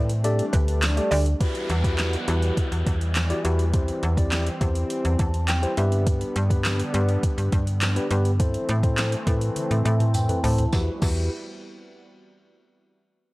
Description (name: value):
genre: dance-pop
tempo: 103 BPM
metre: 4/4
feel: straight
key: E minor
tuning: A4 = 440 Hz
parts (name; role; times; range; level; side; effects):
- mallet-like synth pluck; melody; 0.0-1.2 s; B4 to D5; -32 LUFS; right 2 dB; chorus, sidechain pumping, tape echo
- mellow tine electric piano; accompaniment; 0.0-11.3 s; A3 to A5; -28 LUFS; left 1 dB; sidechain pumping, low-pass filter
- warm analog pad; sustained chords; 0.0-11.0 s; D3 to F#5; -32 LUFS; right 1 dB; lush chorus, sidechain pumping, low-pass filter
- slap-like FM bass; bass; 0.0-11.3 s; D2 to A2; -23 LUFS; equal; sidechain pumping
- smooth R&B drum kit; drums; 0.1-11.2 s; crash cymbal, handclaps, hi-hat, kick drum, snare drum, toms; -25 LUFS; equal; none
- tambourine; percussion; 0.8-1.0, 6.6-11.3 s; none; -39 LUFS; right 3 dB; none
- downlifter; sound effects; 1.4-6.1 s; none; -37 LUFS; equal; none
room: digital ambience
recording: dry, gritty hardware recording, cassette tape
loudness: -20 LUFS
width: side -21 dB against mid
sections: 0.0-1.4 A section; 1.4-10.7 B section; 10.7-13.1 C section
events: drop 0.0-1.4; filter sweep 1.4-10.7; tine electric piano fill 4.9-6.1, 9.6-10.7; drum fill 9.6-10.7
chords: 0.2 Dsus4; 1.4 Emadd9; 3.7 C/E; 5.8 G; 8.4 Am; 10.7 Emadd9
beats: 0.24 0.82 | 1.41 1.99 2.57 3.15 | 3.74 4.32 4.90 5.49 | 6.07 6.65 7.23 7.82 | 8.40 8.98 9.56 10.14 | 10.73